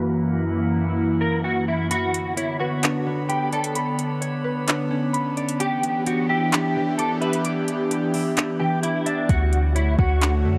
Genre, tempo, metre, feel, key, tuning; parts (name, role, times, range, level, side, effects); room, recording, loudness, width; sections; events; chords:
hip hop, atmospheric cloud-rap; 130 BPM; 4/4; half-time; B minor; A4 = 439 Hz
clean electric guitar; melody; 0.0-10.6 s; D4 to B4; -29 LUFS; equal; ensemble chorus, low-pass filter, tape echo
airy breathy pad; sustained chords; 0.0-10.6 s; F#2 to G4; -26 LUFS; equal; chorus, sidechain pumping
drifting glass-harmonics texture; texture; 0.0-10.6 s; D4 to B5; -39 LUFS; equal; chorus, built-in reverb
concert harp; arpeggios; 1.9-10.6 s; E3 to D6; -31 LUFS; equal; low-pass filter, tape echo
smooth R&B drum kit; drums; 1.9-10.3 s; handclaps, hi-hat, kick drum; -26 LUFS; equal; overdrive
warm 808-style bass; bass; 9.3-10.6 s; D2 to F#2; -22 LUFS; equal
light reverb; low-pass filter; -23 LUFS; mono
0.0-1.9 A section; 1.9-10.6 B section
filter sweep 0.0-1.9; kick muted 1.9-9.3
0.0 F#7; 1.9 Bmadd9; 5.6 Em7; 9.3 Dmaj7